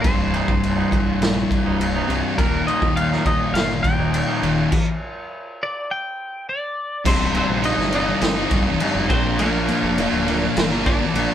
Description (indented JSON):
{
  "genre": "quiet-loud alternative rock",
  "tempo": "103 BPM",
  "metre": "4/4",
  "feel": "straight",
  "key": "C minor",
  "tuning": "A4 = 439 Hz",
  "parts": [
    { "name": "twelve-string electric guitar", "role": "melody", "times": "0.0-11.3 s", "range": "Bb3 to G5", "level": "-25 LUFS", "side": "equal", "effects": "none" },
    { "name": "sludgy distorted guitar", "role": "riff", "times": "0.0-11.3 s", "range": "C2 to Bb4", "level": "-25 LUFS", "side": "right 6 dB", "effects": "overdrive" },
    { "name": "thick fuzz guitar", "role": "riff", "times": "0.0-11.3 s", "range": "C2 to Bb4", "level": "-23 LUFS", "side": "left 6 dB", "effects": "distortion" },
    { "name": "growling picked electric bass", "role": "bass", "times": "0.0-11.3 s", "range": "C1 to Eb2", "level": "-27 LUFS", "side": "equal", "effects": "overdrive" },
    { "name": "raw garage drum kit", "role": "drums", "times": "0.0-11.3 s", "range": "crash cymbal, kick drum, snare drum", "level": "-22 LUFS", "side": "equal", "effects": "none" },
    { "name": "twangy electric guitar", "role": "arpeggios", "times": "0.2-4.5 s", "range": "G2 to Eb4", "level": "-29 LUFS", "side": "right 4 dB", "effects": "none" },
    { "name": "phased string machine", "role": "sustained chords", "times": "7.0-11.3 s", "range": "Bb4 to Eb6", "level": "-36 LUFS", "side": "right 2 dB", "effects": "none" }
  ],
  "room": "moderate studio reverb, RT60 0.6 s",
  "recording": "band playing live in one room",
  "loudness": "-18 LUFS",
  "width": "side -10 dB against mid",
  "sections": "0.0-7.1 A section; 7.1-11.3 B section",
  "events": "clean electric guitar solo 0.0-7.1; stop 4.7-7.1",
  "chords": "0.1 Cm; 2.4 Ebsus2; 4.7 N.C.; 7.1 Cm; 9.1 Bb"
}